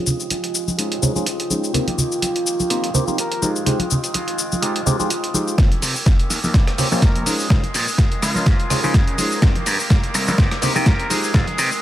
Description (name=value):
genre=filtered disco house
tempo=125 BPM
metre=4/4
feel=swing 55% on 16ths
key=F minor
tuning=A4 = 440 Hz
part: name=string machine, full ensemble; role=sustained chords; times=0.0-11.8 s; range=F4 to Bb5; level=-28 LUFS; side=right 1 dB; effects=ensemble chorus, sidechain pumping, low-pass filter
part: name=electric guitar with an envelope filter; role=riff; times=0.0-11.8 s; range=Eb3 to Ab4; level=-29 LUFS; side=equal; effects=vintage 12-bit sampler grit, sidechain pumping, low-pass filter
part: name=dusty soul sampler-style drum kit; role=drums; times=0.1-11.8 s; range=cabasa, hi-hat, rim click, snare drum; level=-23 LUFS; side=equal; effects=overdrive, sidechain pumping on hats, small room ambience, sidechain pumping on perc
part: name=congas and tambourine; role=percussion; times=0.1-11.8 s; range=none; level=-24 LUFS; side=right 1 dB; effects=sidechain pumping on perc, low-pass filter on perc
part: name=auto-wah clav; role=accompaniment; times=0.8-11.5 s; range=Ab3 to C5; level=-25 LUFS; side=equal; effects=overdrive, phaser, vintage 12-bit sampler grit, sidechain pumping, low-pass filter
part: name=clear trumpet section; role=melody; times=3.2-3.5, 7.0-11.2 s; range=F4 to Bb4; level=-30 LUFS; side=left 1 dB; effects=sidechain pumping, low-pass filter, tape echo
part: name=slap bass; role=bass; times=5.6-11.7 s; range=Bb1 to Db3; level=-23 LUFS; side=equal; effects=sidechain pumping, high-pass filter, low-pass filter
part: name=electronic kick drum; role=drums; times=5.6-11.4 s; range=none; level=-16 LUFS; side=equal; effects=small room ambience
room=light reverb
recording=none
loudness=-16 LUFS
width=side -12 dB against mid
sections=0.0-5.6 A section; 5.6-11.8 B section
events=filter sweep 0.0-5.6, 5.6-11.8; build-up 5.6-11.8; drum fill 5.6-11.8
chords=0.0 Dbmaj7; 1.7 Cm7; 3.4 Fm7; 5.6 Eb13; 7.3 Dbmaj7; 9.4 Cm7; 11.1 Fm7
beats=0.30 0.78 1.26 | 1.74 2.22 2.70 3.18 | 3.66 4.14 4.62 5.10 | 5.58 6.06 6.54 7.02 | 7.50 7.98 8.46 8.94 | 9.42 9.90 10.38 10.86 | 11.34